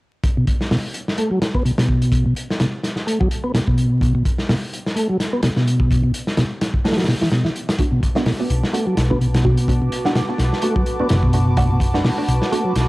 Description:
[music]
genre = breakbeat, breaks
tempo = 127 BPM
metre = 4/4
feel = swing 56% on 16ths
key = B minor pentatonic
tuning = A4 = 440 Hz
[part]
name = crunchy breakbeat drum kit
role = drums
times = 0.2-12.9 s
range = hi-hat, kick drum, snare drum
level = -21 LUFS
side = equal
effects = none
[part]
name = percussive tonewheel organ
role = riff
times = 0.4-12.7 s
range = B2 to B3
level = -20 LUFS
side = equal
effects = chorus vibrato, fast rotary speaker, vintage 12-bit sampler grit, low-pass filter
[part]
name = phased analog pad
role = sustained chords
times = 8.2-12.9 s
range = F#4 to D6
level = -27 LUFS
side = equal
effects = phaser, chorus, sidechain pumping
[part]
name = filtered dub chord stab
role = stabs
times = 7.8-12.6 s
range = A3 to F#4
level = -24 LUFS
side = right 2 dB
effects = phaser, analog chorus, cassette tape, tape echo
[part]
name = hollow-body short-scale picked electric bass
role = bass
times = 8.5-12.9 s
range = F#1 to B1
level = -19 LUFS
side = equal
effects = none
[sound]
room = light reverb, small room reverb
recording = dry, gritty hardware recording, vinyl crackle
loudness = -16 LUFS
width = side -20 dB against mid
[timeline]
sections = 0.2-12.9 A section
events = none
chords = 0.2 Bm7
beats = | 0.24 0.71 1.18 1.66 | 2.13 2.60 3.07 3.55 | 4.02 4.49 4.96 5.44 | 5.91 6.38 6.85 7.33 | 7.80 8.27 8.74 9.22 | 9.69 10.16 10.63 11.11 | 11.58 12.05 12.52

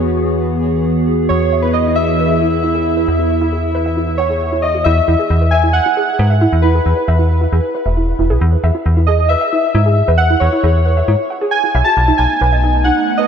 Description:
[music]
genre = IDM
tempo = 135 BPM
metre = 4/4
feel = straight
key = E major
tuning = A4 = 438 Hz
[part]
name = warbly tape-like pad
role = sustained chords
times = 0.0-4.8, 12.2-13.3 s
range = E3 to G#4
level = -17 LUFS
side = right 1 dB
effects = chorus, built-in reverb, phaser
[part]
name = metallic FM bass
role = bass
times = 0.0-12.9 s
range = E1 to G#2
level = -15 LUFS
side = equal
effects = none
[part]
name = warbly lo-fi synth keys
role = melody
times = 1.3-13.3 s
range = B4 to A5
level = -17 LUFS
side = left 1 dB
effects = chorus, ping-pong delay
[part]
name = warbly dusty pluck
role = arpeggios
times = 1.4-13.3 s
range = D#4 to A5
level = -20 LUFS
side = right 3 dB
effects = lush chorus, diffuse ambient delay
[sound]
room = wet lush hall reverb, RT60 3.0 s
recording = dreamy mix soaked in reverb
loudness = -12 LUFS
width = side -7 dB against mid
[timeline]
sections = 0.0-4.9 A section; 4.9-13.3 B section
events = none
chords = 0.0 Eadd9; 12.0 B7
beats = 0.41 0.86 | 1.30 1.75 2.19 2.64 | 3.08 3.52 3.97 4.41 | 4.86 5.30 5.75 6.19 | 6.64 7.08 7.53 7.97 | 8.41 8.86 9.30 9.75 | 10.19 10.64 11.08 11.53 | 11.97 12.41 12.86

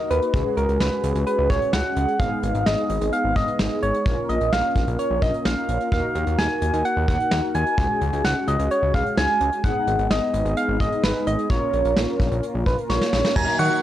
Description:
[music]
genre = synth-pop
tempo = 129 BPM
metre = 4/4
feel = straight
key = unclear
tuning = A4 = 444 Hz
[part]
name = soft struck synth lead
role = melody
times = 0.0-13.8 s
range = Bb4 to Ab5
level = -23 LUFS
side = equal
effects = chorus, phaser, tape echo
[part]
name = mellow synth brass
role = accompaniment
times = 0.0-13.8 s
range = Ab3 to Bb4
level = -26 LUFS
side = equal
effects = chorus
[part]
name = fat analog bass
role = bass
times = 0.1-13.7 s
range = Ab1 to Eb3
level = -24 LUFS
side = equal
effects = none
[part]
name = soft brush drum kit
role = drums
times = 0.1-13.7 s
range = crash cymbal, hi-hat, kick drum, snare drum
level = -25 LUFS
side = equal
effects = none
[part]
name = shimmering bell with halo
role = second line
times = 13.4-13.7 s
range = Bb5 to Db6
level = -26 LUFS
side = right 1 dB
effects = ensemble chorus, tape echo
[part]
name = string machine, cellos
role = sustained chords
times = 13.4-13.8 s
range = Eb3 to Gb4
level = -31 LUFS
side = left 3 dB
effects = phaser, ensemble chorus
[part]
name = analog pluck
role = arpeggios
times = 13.4-13.8 s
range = Gb3 to Eb4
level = -32 LUFS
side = left 1 dB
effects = chorus
[sound]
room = small room reverb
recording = dry, gritty hardware recording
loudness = -19 LUFS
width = side -12 dB against mid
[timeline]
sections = 0.0-13.4 A section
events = drum fill 12.9-13.4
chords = 0.3 Db7sus4; 2.2 Abm; 4.1 Bbm; 5.9 Ebmadd9; 7.8 Dbsus4; 9.6 Abm; 11.5 Bbm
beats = | 0.34 0.80 1.27 1.73 | 2.20 2.66 3.13 3.59 | 4.06 4.52 4.99 5.45 | 5.92 6.38 6.85 7.32 | 7.78 8.24 8.71 9.18 | 9.64 10.11 10.57 11.04 | 11.50 11.97 12.43 12.90 | 13.36

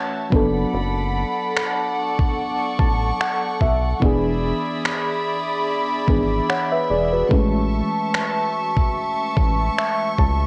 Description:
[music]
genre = contemporary R&B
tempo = 73 BPM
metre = 4/4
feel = swing 54% on 16ths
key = unclear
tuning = A4 = 440 Hz
[part]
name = mellow FM electric piano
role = accompaniment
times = 0.0-10.5 s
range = E3 to A5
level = -26 LUFS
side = equal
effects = chorus, tremolo, cassette tape
[part]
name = warm studio string section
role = sustained chords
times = 0.0-10.5 s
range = F#4 to C#6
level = -26 LUFS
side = equal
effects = sidechain pumping, cassette tape
[part]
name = rubbery square bass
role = bass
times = 0.3-10.5 s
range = E1 to C#2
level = -26 LUFS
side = equal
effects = none
[part]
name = dusty soul sampler-style drum kit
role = drums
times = 0.3-10.4 s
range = finger snaps, kick drum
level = -24 LUFS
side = equal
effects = cassette tape
[sound]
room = moderate spring reverb, RT60 2.1 s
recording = home recording on cassette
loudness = -21 LUFS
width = mono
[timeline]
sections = 0.0-10.5 A section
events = FM electric piano fill 2.4-4.0, 9.4-10.5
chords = 0.3 Bm7/F#; 4.0 E7; 7.3 Amaj7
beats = | 0.73 1.56 2.38 3.20 | 4.02 4.84 5.67 6.49 | 7.31 8.13 8.95 9.78

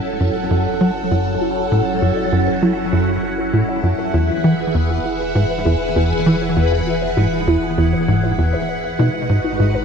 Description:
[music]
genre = ambient, sequencer-driven space music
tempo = 99 BPM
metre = 4/4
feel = straight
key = F# dorian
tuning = A4 = 441 Hz
[part]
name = phased string machine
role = sustained chords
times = 0.0-9.8 s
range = E3 to B4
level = -20 LUFS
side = equal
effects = ensemble chorus, phaser
[part]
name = warbly dusty pluck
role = arpeggios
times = 0.0-9.8 s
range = D#4 to G#5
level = -25 LUFS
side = moving between left 4 dB and right 4 dB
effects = chorus, auto-pan, tape echo
[part]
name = warm sub bass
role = bass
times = 0.0-9.8 s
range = E1 to G#1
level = -33 LUFS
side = equal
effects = none
[part]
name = bubbling stepped-filter texture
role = texture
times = 0.0-9.8 s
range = F#5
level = -27 LUFS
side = right 4 dB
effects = chorus, built-in reverb
[part]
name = tight sequencer bass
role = riff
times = 0.2-9.8 s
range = E2 to F#3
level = -18 LUFS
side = equal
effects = analog chorus, tape echo
[sound]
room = moderate plate reverb, RT60 2.7 s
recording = dark, warm production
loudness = -15 LUFS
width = side -6 dB against mid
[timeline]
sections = 0.0-9.8 A section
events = fade-in on sub bass 0.0-9.8; filter sweep on synth arpeggio sound 0.0-9.8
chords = 0.0 F#m7; 4.1 E; 9.0 G#m7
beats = 0.51 1.11 | 1.72 2.32 2.93 3.54 | 4.14 4.75 5.36 5.96 | 6.57 7.17 7.78 8.38 | 8.99 9.60

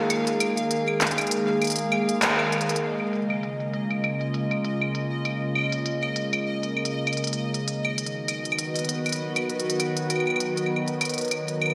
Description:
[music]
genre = IDM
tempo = 99 BPM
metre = 4/4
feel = swing 56% on 16ths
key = Db mixolydian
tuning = A4 = 436 Hz
[part]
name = warbly tape-like pad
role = sustained chords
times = 0.0-11.7 s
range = Db3 to Cb5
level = -29 LUFS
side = equal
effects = chorus, built-in reverb, phaser, shimmer reverb
[part]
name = pulsing gated texture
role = texture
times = 0.0-11.7 s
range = Eb5 to F5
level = -36 LUFS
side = equal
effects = chorus, built-in reverb, shimmer reverb
[part]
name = organic electronic drum kit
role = drums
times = 0.1-11.7 s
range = claves, handclaps, hi-hat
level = -30 LUFS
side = equal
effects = overdrive, low-pass filter on hats, low-pass filter on perc, low-pass filter on snare, low-pass filter on room, gated reverb, delay
[sound]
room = wet plate reverb, RT60 2.8 s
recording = bright 1980s-style digital production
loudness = -26 LUFS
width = mono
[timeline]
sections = 0.0-2.8 A section; 2.8-11.7 B section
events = band accent 2.2-2.5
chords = 0.0 Ebsus4; 2.8 Db6; 7.7 Cb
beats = | 0.40 1.01 1.61 2.22 | 2.83 3.43 4.04 4.65 | 5.25 5.86 6.46 7.07 | 7.68 8.28 8.89 9.49 | 10.10 10.71 11.31

